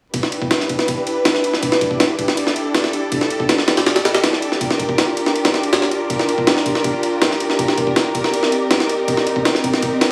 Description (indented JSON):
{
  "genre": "drum and bass, jungle",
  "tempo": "161 BPM",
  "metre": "4/4",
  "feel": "straight",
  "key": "E minor",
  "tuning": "A4 = 439 Hz",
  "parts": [
    { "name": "dark studio string section", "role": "sustained chords", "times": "0.1-10.1 s", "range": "C4 to B4", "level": "-22 LUFS", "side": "equal", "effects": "vintage 12-bit sampler grit" },
    { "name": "jungle sampler-style drum kit", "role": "drums", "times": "0.1-10.1 s", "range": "kick drum, ride cymbal, snare drum", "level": "-20 LUFS", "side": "equal", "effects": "high-pass filter on cymbals, high-pass filter on kick, high-pass filter on snare" },
    { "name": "wind-like tuned noise texture", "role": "texture", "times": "1.2-10.1 s", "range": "D5 to D6", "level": "-33 LUFS", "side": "equal", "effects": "built-in reverb" }
  ],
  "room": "moderate echo chamber reverb, RT60 2.1 s",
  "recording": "vinyl crackle, small room ambience",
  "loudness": "-18 LUFS",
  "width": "mono",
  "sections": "0.1-10.1 A section",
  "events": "none",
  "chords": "0.1 Em7; 4.6 Gm7; 8.3 Cm7"
}